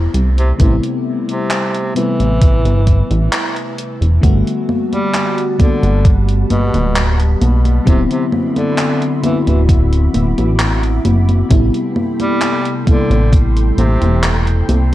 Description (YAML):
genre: vaporwave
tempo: 66 BPM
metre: 4/4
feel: straight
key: A dorian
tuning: A4 = 439 Hz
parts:
  - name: FM electric piano with soft pad layer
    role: accompaniment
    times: 0.0-14.9 s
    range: C3 to F#4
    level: -19 LUFS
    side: left 2 dB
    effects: lush chorus, analog delay
  - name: chorused synth bass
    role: bass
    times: 0.0-14.9 s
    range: D1 to C2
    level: -13 LUFS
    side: equal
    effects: none
  - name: gated 80s digital drum machine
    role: drums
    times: 0.1-14.9 s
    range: congas, handclaps, hi-hat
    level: -20 LUFS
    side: left 1 dB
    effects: gated reverb
  - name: clear tenor saxophone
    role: melody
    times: 0.4-14.9 s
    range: B2 to G3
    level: -22 LUFS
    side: equal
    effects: tape echo
  - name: electronic kick drum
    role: drums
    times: 0.6-13.5 s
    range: none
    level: -11 LUFS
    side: equal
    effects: none
  - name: soft string machine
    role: sustained chords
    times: 4.8-14.9 s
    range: G3 to D6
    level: -27 LUFS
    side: right 2 dB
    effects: phaser, ensemble chorus
room: light reverb, digital ambience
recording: cassette tape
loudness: -12 LUFS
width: side -15 dB against mid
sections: 0.0-14.9 A section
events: none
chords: 0.0 Am9; 4.2 Gmaj9; 7.9 D13; 11.5 Am9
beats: | 0.60 1.51 2.42 3.32 | 4.23 5.14 6.05 6.96 | 7.87 8.78 9.69 10.60 | 11.51 12.41 13.32 14.23